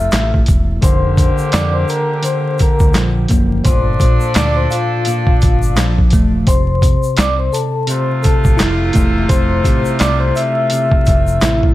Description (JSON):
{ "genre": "hip hop, boom-bap hip-hop", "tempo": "85 BPM", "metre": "4/4", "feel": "swing 57% on 16ths", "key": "F major", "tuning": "A4 = 441 Hz", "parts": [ { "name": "vibraphone with soft mallets", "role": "melody", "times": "0.0-11.6 s", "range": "F4 to E6", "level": "-20 LUFS", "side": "left 4 dB", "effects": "high-pass filter, low-pass filter, ping-pong delay" }, { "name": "bell-like tine electric piano", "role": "accompaniment", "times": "0.0-11.7 s", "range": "Bb2 to E4", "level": "-18 LUFS", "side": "equal", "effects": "medium stereo tremolo, cassette tape, high-pass filter, low-pass filter" }, { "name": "warm horn section", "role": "stabs", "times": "0.0-11.7 s", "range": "C3 to A4", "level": "-24 LUFS", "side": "right 2 dB", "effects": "high-pass filter, low-pass filter, ping-pong delay" }, { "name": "deep dub fingered electric bass", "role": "bass", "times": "0.0-11.7 s", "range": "E1 to F2", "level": "-18 LUFS", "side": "equal", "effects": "none" }, { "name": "boom bap sampler-style drum kit", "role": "drums", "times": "0.1-11.7 s", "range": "handclaps, hi-hat, kick drum, snare drum", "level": "-14 LUFS", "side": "equal", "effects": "none" }, { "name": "tube shaker", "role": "percussion", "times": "0.1-11.6 s", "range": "none", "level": "-34 LUFS", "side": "left 4 dB", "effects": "none" } ], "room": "small room ambience", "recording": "vinyl crackle", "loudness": "-12 LUFS", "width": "side -15 dB against mid", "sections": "0.0-11.7 A section", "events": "break 0.0-0.8", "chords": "0.0 Fmaj7; 0.8 Bb6/F; 3.6 Gm9; 6.5 Fmaj7", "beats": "0.12 | 0.83 1.53 2.24 2.94 | 3.65 4.36 5.06 5.77 | 6.47 7.18 7.89 8.59 | 9.30 10.00 10.71 11.41" }